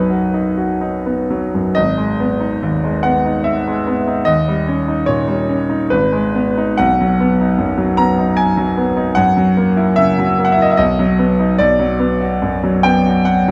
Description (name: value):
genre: classical, romantic character piece for solo piano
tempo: 60-78 BPM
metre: 3/4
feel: rubato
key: G# minor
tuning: A4 = 443 Hz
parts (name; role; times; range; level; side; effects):
- bright grand piano; solo; 0.0-13.5 s; G#1 to A#5; -16 LUFS; equal; none
room: wet recital hall reverb, RT60 1.8 s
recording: dark, warm production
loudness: -16 LUFS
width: mono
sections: 0.0-1.8 A section; 1.8-13.5 B section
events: none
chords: 0.0 B; 1.8 G#m; 4.3 D#7; 5.9 G#m; 6.8 B; 9.2 F#7; 10.8 B; 11.6 Bm